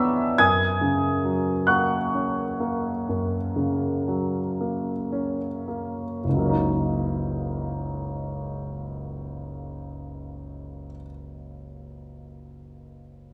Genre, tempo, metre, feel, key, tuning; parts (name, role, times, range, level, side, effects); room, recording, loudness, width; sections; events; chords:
classical, impressionist solo piano; 35-48 BPM; 4/4; rubato; F# major; A4 = 442 Hz
clear grand piano; solo; 0.0-13.3 s; F#1 to G#6; -26 LUFS; equal
wet recital hall reverb, RT60 1.6 s; recorded in a church or concert hall; -25 LUFS; mono
0.0-6.2 A section; 6.2-12.7 B section
slowing down 0.0-6.2
0.4 F#add9; 6.2 F#6